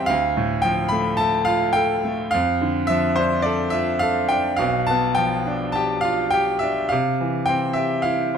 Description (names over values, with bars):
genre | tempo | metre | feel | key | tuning
classical, romantic nocturne for solo piano | 53 BPM | 4/4 | rubato | unclear | A4 = 441 Hz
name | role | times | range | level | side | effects
bright concert grand piano | solo | 0.0-8.4 s | B1 to D6 | -18 LUFS | equal | none
room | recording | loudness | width
moderate recital hall reverb, RT60 1.4 s | close, detailed microphones | -19 LUFS | side -7 dB against mid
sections
0.0-8.4 A section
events
none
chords
0.1 Dm; 2.3 Dm/F; 4.6 G7/B; 6.9 C